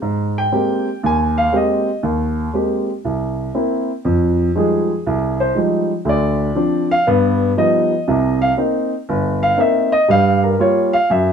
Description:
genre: jazz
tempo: 119 BPM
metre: 4/4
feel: swing 66% on 8ths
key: unclear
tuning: A4 = 440 Hz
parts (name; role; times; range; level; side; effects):
- warm grand piano; solo; 0.0-11.3 s; G1 to Ab5; -15 LUFS; equal; none
room: light reverb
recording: dark, warm production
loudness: -15 LUFS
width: side -7 dB against mid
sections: 0.0-4.0 A section; 4.0-11.3 B section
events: grand piano solo 4.0-11.3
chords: 0.0 Abmaj9; 3.0 C7; 4.0 Fm9; 6.0 Dm7; 7.1 Gaug7; 8.1 Cm7; 10.1 Gm7b5

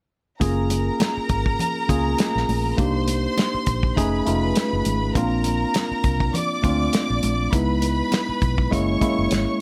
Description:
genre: lush 1970s-style soul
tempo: 101 BPM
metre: 4/4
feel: swing 54% on 16ths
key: unclear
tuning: A4 = 439 Hz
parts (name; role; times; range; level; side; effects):
- warm symphonic violin section; second line; 0.4-9.6 s; A#4 to D6; -29 LUFS; equal; none
- tine electric piano; accompaniment; 0.4-9.6 s; G#3 to G#4; -26 LUFS; equal; none
- vintage muted fingered electric bass; bass; 0.4-9.4 s; F1 to D2; -27 LUFS; equal; none
- warm soul drum kit; drums; 0.4-9.5 s; hi-hat, kick drum, snare drum; -26 LUFS; equal; none
- congas; percussion; 0.4-9.5 s; none; -33 LUFS; equal; none
room: light reverb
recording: none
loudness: -22 LUFS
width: mono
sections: 0.4-9.6 A section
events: none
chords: 0.4 F#maj9; 2.8 Cm9; 4.0 F7alt; 5.2 A#maj7; 7.5 C#m9; 8.7 F#9

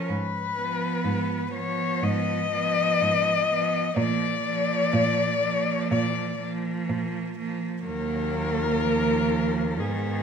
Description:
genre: classical, lyrical piece for cello ensemble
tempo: 62 BPM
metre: 4/4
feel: rubato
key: Eb minor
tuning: A4 = 435 Hz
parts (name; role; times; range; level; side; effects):
- rich cello; melody; 0.0-10.2 s; Ab4 to Eb5; -25 LUFS; left 6 dB; none
- warm cello; second line; 0.0-10.2 s; Bb3 to Cb4; -30 LUFS; right 12 dB; none
- rich cello; accompaniment; 0.0-10.2 s; Eb3 to Gb3; -31 LUFS; equal; none
- rich cello; bass; 0.1-10.2 s; Eb2 to Bb2; -30 LUFS; right 2 dB; none
room: wet recital hall reverb, RT60 1.4 s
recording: none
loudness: -23 LUFS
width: side -6 dB against mid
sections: 0.0-10.2 A section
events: none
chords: 0.1 Fdim/Ab; 4.0 Bb; 7.9 Ebm

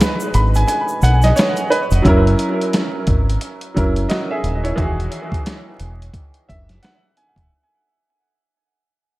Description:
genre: hip hop, boom-bap hip-hop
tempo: 88 BPM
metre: 4/4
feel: swing 60% on 16ths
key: unclear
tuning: A4 = 442 Hz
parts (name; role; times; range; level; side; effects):
- clear upright piano; accompaniment; 0.0-7.5 s; D#3 to B5; -19 LUFS; right 1 dB; cassette tape, high-pass filter, low-pass filter, dub echo
- dusty soul sampler-style drum kit; drums; 0.0-7.5 s; hi-hat, kick drum, snare drum; -20 LUFS; equal; none
- egg shaker; percussion; 0.0-2.0 s; none; -37 LUFS; left 4 dB; none
- deep dub fingered electric bass; bass; 0.3-7.5 s; D#1 to B1; -16 LUFS; equal; none
room: light reverb, digital ambience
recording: echo-heavy mix, vinyl crackle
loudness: -15 LUFS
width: side -19 dB against mid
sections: 0.0-2.0 A section; 2.0-7.5 B section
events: kick muted 0.7-2.0; fade-out 2.0-7.5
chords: 0.0 G#m7; 2.0 F#7; 4.8 Emaj9

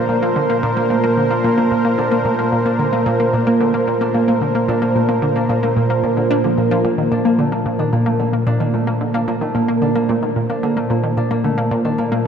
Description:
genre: ambient, sequencer-driven space music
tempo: 111 BPM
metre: 4/4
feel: straight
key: Bb major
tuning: A4 = 438 Hz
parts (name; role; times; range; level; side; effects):
- sweeping resonant pad; sustained chords; 0.0-12.3 s; Bb2 to C5; -18 LUFS; right 1 dB; chorus
- concert harp; arpeggios; 0.0-12.3 s; Bb2 to D4; -22 LUFS; right 1 dB; auto-pan, analog delay
- analog pluck; riff; 0.0-12.2 s; Bb2 to D4; -20 LUFS; equal; chorus, analog delay
room: wet huge ambient reverb, RT60 7.5 s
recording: dreamy mix soaked in reverb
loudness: -15 LUFS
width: side -7 dB against mid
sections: 0.0-12.3 A section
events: none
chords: 0.0 Bbadd9

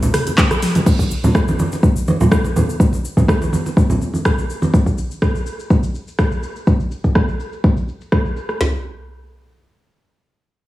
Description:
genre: house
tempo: 124 BPM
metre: 4/4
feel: straight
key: none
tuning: none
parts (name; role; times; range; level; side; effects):
- afro-pop drum kit; drums; 0.0-8.6 s; cabasa, crash cymbal, handclaps, hi-hat, rim click, toms; -23 LUFS; equal; overdrive, low-pass filter on perc, studio ambience, low-pass filter on hats, low-pass filter on snare, low-pass filter on toms, low-pass filter on cymbals
- congas; percussion; 0.0-4.7 s; none; -19 LUFS; right 1 dB; none
- afro-pop drum kit; drums; 0.4-8.7 s; kick drum, snare drum, toms; -15 LUFS; equal; overdrive, studio ambience
room: light reverb, digital ambience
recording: heavily compressed radio sound, studio reverb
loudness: -15 LUFS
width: side -16 dB against mid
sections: 0.9-8.6 A section; 8.6-10.7 B section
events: drum fill 0.6; filter sweep on drum 0.9-8.6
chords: none

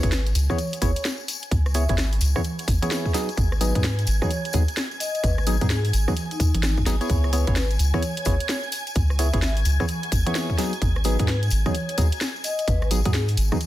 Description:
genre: UK garage, two-step garage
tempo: 129 BPM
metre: 4/4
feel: swing 63% on 16ths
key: C# minor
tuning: A4 = 442 Hz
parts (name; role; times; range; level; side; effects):
- vibraphone with soft mallets; melody; 0.0-13.2 s; D#4 to E5; -32 LUFS; left 2 dB; none
- soft string machine; sustained chords; 0.3-13.7 s; G#5 to G#6; -35 LUFS; equal; phaser, ensemble chorus, sidechain pumping
- percussive organ stab; stabs; 0.0-13.6 s; F#3 to C#5; -29 LUFS; equal; chorus, digital delay
- soft dub sub bass; bass; 0.0-13.5 s; G#1 to G#2; -22 LUFS; equal; sidechain pumping
- electronic kick drum; drums; 0.0-13.6 s; none; -25 LUFS; equal; studio reverb
- garage drum kit; drums; 0.0-13.7 s; congas, hi-hat, rim click, snare drum; -29 LUFS; right 1 dB; overdrive, studio reverb
- tambourine; percussion; 0.0-13.7 s; none; -34 LUFS; left 5 dB; none
room: digital ambience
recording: dense, heavily limited modern master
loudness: -20 LUFS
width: side -15 dB against mid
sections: 0.0-13.7 A section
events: none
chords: 0.0 C#m7; 3.1 G#m7; 7.1 C#m7; 10.6 G#m7

